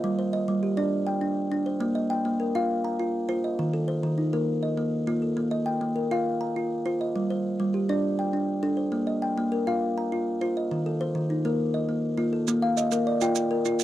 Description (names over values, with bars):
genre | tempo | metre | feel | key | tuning
southern african traditional, mbira-style interlocking cycle | 135 BPM (dotted quarters) | 12/8 | straight | Bb major | A4 = 441 Hz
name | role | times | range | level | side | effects
kalimba | arpeggios | 0.0-13.8 s | Eb3 to Bb5 | -24 LUFS | equal | none
maracas | percussion | 12.5-13.8 s | none | -31 LUFS | right 13 dB | none
room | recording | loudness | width
light reverb | dry, close 1970s-style studio recording | -24 LUFS | side -13 dB against mid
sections
0.0-12.5 A section; 12.5-13.8 B section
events
none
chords
0.0 G5; 1.8 Bb5; 3.6 Eb5; 5.4 Bb5; 7.2 G5; 8.9 Bb5; 10.7 Eb5; 12.5 Bb